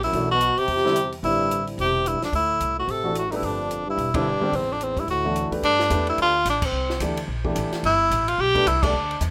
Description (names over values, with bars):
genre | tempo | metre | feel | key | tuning
jazz, small-group swing and bop | 218 BPM | 4/4 | swing 60% on 8ths | G major | A4 = 440 Hz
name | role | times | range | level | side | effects
bright tenor saxophone | melody | 0.0-9.2 s | C4 to A4 | -24 LUFS | equal | none
breathy trombone | second line | 0.0-5.5 s | E2 to C3 | -32 LUFS | equal | none
upright bass | bass | 0.0-9.3 s | E1 to A2 | -32 LUFS | equal | none
compact cocktail drum kit | drums | 0.0-9.3 s | crash cymbal, hi-hat, kick drum, ride cymbal, snare drum | -34 LUFS | equal | none
warm concert grand piano | accompaniment | 0.1-8.9 s | D3 to D5 | -30 LUFS | equal | none
room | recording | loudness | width
light reverb | none | -23 LUFS | mono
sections
0.0-5.6 A section; 5.6-9.3 A section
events
band accent 4.1, 6.6, 8.8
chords
0.1 Bm7; 0.7 Cadd9/E; 1.2 Am7; 2.3 D9; 3.4 G9; 4.0 Em7; 4.5 Amadd11; 5.1 Dadd9; 5.6 G9; 6.7 C9; 7.8 Gadd9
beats
| 0.13 0.41 0.68 0.96 | 1.23 1.51 1.78 2.06 | 2.33 2.61 2.88 3.16 | 3.43 3.71 3.98 4.26 | 4.53 4.81 5.08 5.36 | 5.63 5.91 6.18 6.46 | 6.73 7.01 7.28 7.55 | 7.83 8.11 8.38 8.65 | 8.93 9.20